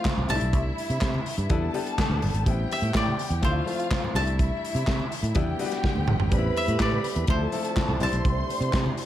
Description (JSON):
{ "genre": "disco", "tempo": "124 BPM", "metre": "4/4", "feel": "straight", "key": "unclear", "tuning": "A4 = 440 Hz", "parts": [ { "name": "koto", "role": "melody", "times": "0.0-9.1 s", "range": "C5 to A5", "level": "-30 LUFS", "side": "left 1 dB", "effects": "none" }, { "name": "warm studio string section", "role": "second line", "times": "0.0-9.1 s", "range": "E4 to C6", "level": "-32 LUFS", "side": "right 1 dB", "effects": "none" }, { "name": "warm concert grand piano", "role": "accompaniment", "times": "0.0-9.1 s", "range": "F3 to G4", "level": "-32 LUFS", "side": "left 5 dB", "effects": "none" }, { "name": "modern studio drum kit", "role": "drums", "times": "0.0-9.1 s", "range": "handclaps, hi-hat, kick drum, snare drum, toms", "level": "-28 LUFS", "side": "right 1 dB", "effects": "none" }, { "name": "congas", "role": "percussion", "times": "0.1-9.1 s", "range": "none", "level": "-36 LUFS", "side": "left 3 dB", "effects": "none" }, { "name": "fingered electric bass", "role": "bass", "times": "0.2-8.9 s", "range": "G1 to C3", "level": "-26 LUFS", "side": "right 1 dB", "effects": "none" }, { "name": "dark French horn section", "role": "sustained chords", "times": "6.3-9.1 s", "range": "C3 to G4", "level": "-34 LUFS", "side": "right 4 dB", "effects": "none" } ], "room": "light reverb, studio reverb", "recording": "none", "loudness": "-23 LUFS", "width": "side -12 dB against mid", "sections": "0.0-9.1 A section", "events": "drum fill 5.8-6.3", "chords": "0.3 C6; 1.5 Em7; 2.5 Am7; 3.4 Dm7; 4.1 C6; 5.4 Em7; 6.3 Am7; 7.3 Dm7; 8.0 C6" }